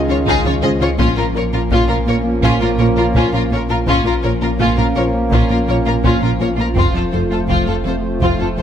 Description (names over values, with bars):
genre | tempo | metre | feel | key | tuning
cinematic, hybrid orchestral and electronic film score | 83 BPM | 4/4 | straight | Bb minor | A4 = 441 Hz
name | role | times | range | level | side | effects
hollow soft pad | sustained chords | 0.0-8.6 s | Eb3 to C5 | -25 LUFS | left 1 dB | ensemble chorus
mellow French horn section | sustained chords | 0.0-8.6 s | C4 to F4 | -25 LUFS | left 3 dB | none
warm trombone section | sustained chords | 0.0-8.6 s | Eb3 to Bb3 | -24 LUFS | right 4 dB | none
warm sub bass | bass | 0.0-8.6 s | F1 to Db2 | -23 LUFS | equal | none
felt-muted upright piano | texture | 0.0-8.6 s | A3 to Db5 | -30 LUFS | left 2 dB | none
warm symphonic violin section | melody | 0.1-8.6 s | F4 to Eb5 | -22 LUFS | left 4 dB | none
rich symphonic violin section | second line | 0.1-8.6 s | C4 to Bb4 | -24 LUFS | left 2 dB | none
warm symphonic viola section | accompaniment | 0.1-8.6 s | F4 | -25 LUFS | left 1 dB | none
thumb-piano-like synth pluck | arpeggios | 0.1-8.6 s | Db3 to Bb4 | -26 LUFS | left 3 dB | none
smooth synth bass | riff | 0.1-8.6 s | Db2 to Bb3 | -23 LUFS | right 2 dB | none
dark symphonic cello section | bass | 0.1-8.6 s | F2 to Db3 | -24 LUFS | right 2 dB | none
rich symphonic double bass section | bass | 0.3-8.6 s | F1 to Db2 | -24 LUFS | right 3 dB | none
taiko ensemble | drums | 0.3-8.6 s | none | -22 LUFS | left 1 dB | none
room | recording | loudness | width
moderate scoring stage reverb, RT60 1.7 s | close, detailed microphones | -13 LUFS | side -9 dB against mid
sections
0.0-8.6 A section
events
none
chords
0.0 Dbadd9; 1.0 Bbm; 6.8 F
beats
0.26 | 0.98 1.71 2.43 3.15 | 3.87 4.60 5.32 6.04 | 6.77 7.49 8.21